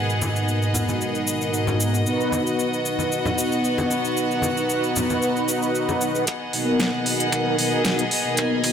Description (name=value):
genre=nu-disco, nu disco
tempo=114 BPM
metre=4/4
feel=straight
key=G# minor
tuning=A4 = 440 Hz
part: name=mellow synth brass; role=accompaniment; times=0.0-8.7 s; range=G#2 to B4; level=-22 LUFS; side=equal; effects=chorus, dub echo
part: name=rich studio violin section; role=sustained chords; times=0.0-8.7 s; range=B3 to G#5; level=-26 LUFS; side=left 1 dB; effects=sidechain pumping
part: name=pop drum kit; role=drums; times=0.1-8.7 s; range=cabasa, hi-hat, snare drum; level=-27 LUFS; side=equal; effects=none
part: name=congas and bongos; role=percussion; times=0.2-6.2 s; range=none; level=-30 LUFS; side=left 2 dB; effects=none
part: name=kick drum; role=drums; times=6.3-8.7 s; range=none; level=-28 LUFS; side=equal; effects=high-pass filter on kick, high-pass filter on snare, high-pass filter on room
room=moderate echo chamber reverb, RT60 1.3 s, small room reverb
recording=none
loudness=-20 LUFS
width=side -8 dB against mid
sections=0.0-6.3 A section; 6.3-8.7 B section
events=filter sweep on analog polysynth 0.0-6.3, 6.3-8.7; build-up 6.3-8.7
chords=0.0 G#m7; 2.1 B; 6.3 G#m7